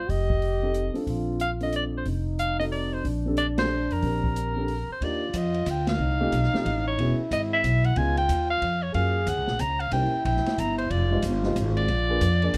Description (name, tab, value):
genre	jazz, small-group swing and bop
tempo	183 BPM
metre	3/4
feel	swing 64% on 8ths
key	Bb major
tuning	A4 = 439 Hz
part	clear soprano saxophone	melody	0.0-12.6 s	Bb4 to Bb5	-30 LUFS	equal	none
part	mellow trombone	second line	0.0-12.6 s	D4 to Ab4	-34 LUFS	equal	none
part	upright bass	bass	0.0-12.6 s	E1 to Gb2	-29 LUFS	equal	none
part	open jazz drum kit	drums	0.1-12.6 s	hi-hat, kick drum, ride cymbal, snare drum	-37 LUFS	equal	none
part	dark concert grand piano	accompaniment	0.6-12.5 s	Ab3 to D5	-34 LUFS	equal	none
room	light reverb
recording	close, detailed microphones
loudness	-25 LUFS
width	mono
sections	0.0-5.0 A section; 5.0-12.6 B section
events	band accent 3.5, 5.8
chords	0.1 F9; 1.1 Bbmaj9; 2.1 F7b9; 3.0 Bbmaj13; 5.0 Ebmaj9; 6.0 F9; 7.0 E6; 8.0 Db9; 8.9 Gbmaj9; 9.9 C7b9; 10.9 Fm7; 11.9 Bb7b9